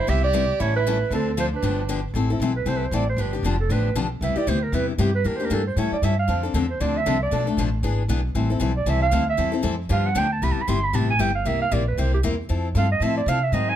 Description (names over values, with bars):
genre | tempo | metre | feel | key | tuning
acoustic string swing (jazz manouche) | 232 BPM | 4/4 | swing 57% on 8ths | A minor, C major from 10.4 s | A4 = 438 Hz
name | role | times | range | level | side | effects
breathy clarinet | melody | 0.0-13.8 s | D4 to C6 | -25 LUFS | right 5 dB | none
warm violin | second line | 0.0-1.9 s | C4 to G4 | -31 LUFS | right 6 dB | none
picked steel-string acoustic guitar | accompaniment | 0.1-13.7 s | B2 to A4 | -26 LUFS | left 5 dB | none
upright bass | bass | 0.1-13.8 s | F1 to C3 | -23 LUFS | equal | none
room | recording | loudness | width
light reverb | dark, warm production | -20 LUFS | side -11 dB against mid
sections
0.0-2.1 A section; 2.1-10.4 B section; 10.4-13.8 B section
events
clarinet solo 2.1-13.8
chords
0.1 Cmaj7; 0.6 A7; 1.1 Dm7; 1.6 G7; 2.1 Am7; 3.2 G7; 4.2 Cmaj9; 5.3 Em7b5; 5.8 A7; 6.3 Dm7; 7.3 Bm7b5; 7.8 E7; 8.4 Am7; 9.9 G7; 10.4 Cmaj7; 11.5 C7; 12.5 Fmaj7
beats
| 0.08 0.34 0.60 0.85 | 1.11 1.37 1.63 1.89 | 2.15 2.41 2.67 2.92 | 3.18 3.44 3.70 3.96 | 4.22 4.48 4.74 4.99 | 5.25 5.51 5.77 6.03 | 6.29 6.54 6.80 7.06 | 7.32 7.58 7.84 8.10 | 8.35 8.61 8.87 9.13 | 9.39 9.64 9.90 10.16 | 10.42 10.68 10.94 11.20 | 11.46 11.72 11.97 12.23 | 12.49 12.75 13.01 13.27 | 13.53